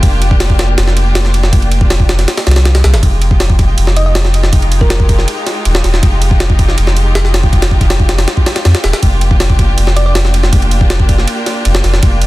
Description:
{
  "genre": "drum and bass, jungle",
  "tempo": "160 BPM",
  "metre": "4/4",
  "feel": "straight",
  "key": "F dorian",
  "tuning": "A4 = 440 Hz",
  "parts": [
    { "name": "rich studio string section", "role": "sustained chords", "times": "0.0-12.3 s", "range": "Ab3 to G4", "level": "-19 LUFS", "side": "left 1 dB", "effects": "none" },
    { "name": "soft dub sub bass", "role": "bass", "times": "0.0-12.3 s", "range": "Eb1 to F2", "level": "-11 LUFS", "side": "equal", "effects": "none" },
    { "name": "jungle sampler-style drum kit", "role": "drums", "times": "0.0-12.3 s", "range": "kick drum, ride cymbal, snare drum", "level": "-12 LUFS", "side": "equal", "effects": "studio reverb" },
    { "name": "thumb-piano-like synth pluck", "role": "melody", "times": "4.0-5.3, 10.0-10.1 s", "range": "Bb4 to Eb5", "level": "-22 LUFS", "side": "equal", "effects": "chorus, dub echo" }
  ],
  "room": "digital ambience",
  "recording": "dense, heavily limited modern master",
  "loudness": "-9 LUFS",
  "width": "side -18 dB against mid",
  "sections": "0.0-3.0 A section; 3.0-12.3 A section",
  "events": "drop 0.0-3.0, 3.0-12.3",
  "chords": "0.0 Gm7/F; 3.0 Fm9; 9.0 Gm7/F"
}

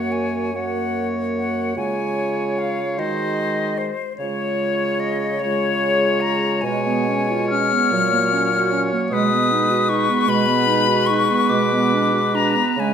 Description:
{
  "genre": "classical, slow romantic movement for wind quintet",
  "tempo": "49 BPM (dotted quarters)",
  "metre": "6/8",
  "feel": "uneven beats, rubato",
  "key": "unclear",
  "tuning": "A4 = 440 Hz",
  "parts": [
    { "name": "silver concert flute", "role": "melody", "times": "0.0-12.9 s", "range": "B#4 to E#6", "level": "-21 LUFS", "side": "left 6 dB", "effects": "none" },
    { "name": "clear oboe", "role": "second line", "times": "0.0-12.9 s", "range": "B4 to C#5", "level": "-27 LUFS", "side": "left 2 dB", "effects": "none" },
    { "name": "mellow clarinet", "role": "accompaniment", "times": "0.0-12.9 s", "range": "F#3 to F#4", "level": "-25 LUFS", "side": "right 6 dB", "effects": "none" },
    { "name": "warm French horn", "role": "accompaniment", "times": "0.0-12.9 s", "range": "F#3 to C#4", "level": "-25 LUFS", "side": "equal", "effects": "none" },
    { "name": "warm bassoon", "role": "bass", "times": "0.0-12.9 s", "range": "F#2 to D#3", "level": "-25 LUFS", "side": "right 2 dB", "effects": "none" }
  ],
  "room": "wet recital hall reverb, RT60 1.4 s",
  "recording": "none",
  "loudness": "-17 LUFS",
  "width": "side -8 dB against mid",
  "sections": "0.0-12.9 A section",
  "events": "none",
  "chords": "0.0 F#; 1.8 C#; 3.0 G#7/D#; 4.2 C#; 6.6 C#7/B; 7.9 F#/A#; 9.1 G#m7/B; 11.5 G#m7b5/B"
}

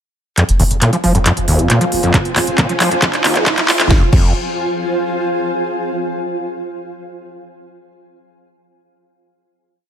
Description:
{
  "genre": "driving peak-time techno",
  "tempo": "136 BPM",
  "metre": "4/4",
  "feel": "straight",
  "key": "F minor",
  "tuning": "A4 = 442 Hz",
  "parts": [
    { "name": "screaming distorted acid line", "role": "riff", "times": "0.4-4.3 s", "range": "Eb2 to F3", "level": "-17 LUFS", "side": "equal", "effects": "distortion, chorus, sidechain pumping, tape echo" },
    { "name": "techno drum kit", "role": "drums", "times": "0.4-4.2 s", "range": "crash cymbal, handclaps, hi-hat, snare drum", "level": "-17 LUFS", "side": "equal", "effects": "none" },
    { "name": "riser", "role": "sound effects", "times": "1.4-3.9 s", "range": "none", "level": "-23 LUFS", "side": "right 3 dB", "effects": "none" },
    { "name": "granular cloud pad", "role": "texture", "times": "1.2-5.6 s", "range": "F4 to Ab5", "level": "-20 LUFS", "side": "equal", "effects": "built-in reverb, sidechain pumping" },
    { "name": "warm sub bass", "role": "bass", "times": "0.5-4.3 s", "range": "F1", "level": "-19 LUFS", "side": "equal", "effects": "overdrive, sidechain pumping, low-pass filter" },
    { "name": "electronic kick drum", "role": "drums", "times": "2.1-4.2 s", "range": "none", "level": "-14 LUFS", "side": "equal", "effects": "none" }
  ],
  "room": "moderate stone room reverb, RT60 1.0 s",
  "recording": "high-pass filter",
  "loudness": "-13 LUFS",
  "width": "side -9 dB against mid",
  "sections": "0.4-3.9 build; 3.9-5.7 final chord",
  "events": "build-up 0.4-3.9; drum fill 0.4-3.9; filter sweep on acid bass 0.4-3.9; filter sweep 0.4-3.9; riser 1.4-3.9",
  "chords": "0.4 Fm"
}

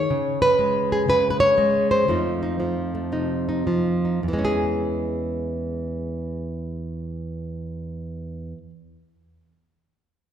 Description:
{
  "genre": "solo jazz",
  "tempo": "104-123 BPM",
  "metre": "4/4",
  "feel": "swing 66% on 8ths",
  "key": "unclear",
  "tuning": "A4 = 440 Hz",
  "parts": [
    { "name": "nylon-string guitar", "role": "solo", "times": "0.0-8.7 s", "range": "E2 to C#5", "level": "-21 LUFS", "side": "equal", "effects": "none" }
  ],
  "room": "wet recital hall reverb, RT60 1.5 s",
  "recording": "recorded in a church or concert hall",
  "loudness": "-21 LUFS",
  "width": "side -9 dB against mid",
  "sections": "0.0-4.2 A section; 4.2-8.8 B section",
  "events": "slowing down 0.1-4.2",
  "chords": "0.1 C#5; 2.1 F7; 4.2 E6"
}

